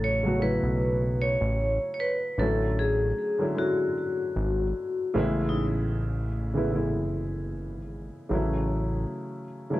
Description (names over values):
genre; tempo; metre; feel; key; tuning
lo-fi hip hop; 76 BPM; 4/4; swing 56% on 16ths; unclear; A4 = 441 Hz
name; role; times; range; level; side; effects
vibraphone with medium hard mallets; melody; 0.0-5.5 s; D#4 to C#5; -28 LUFS; left 1 dB; low-pass filter, tape echo
dark upright piano; accompaniment; 0.0-9.8 s; C#3 to F#4; -30 LUFS; equal; cassette tape, low-pass filter
fat analog bass; bass; 0.0-9.1 s; F#1 to B1; -28 LUFS; equal; none
room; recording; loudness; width
moderate studio reverb, RT60 0.6 s; none; -25 LUFS; side -16 dB against mid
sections
0.0-9.8 A section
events
break 5.5-9.8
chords
0.0 A69; 2.4 Dmaj9#11/A; 5.1 C#m7/A; 8.3 F#m7/A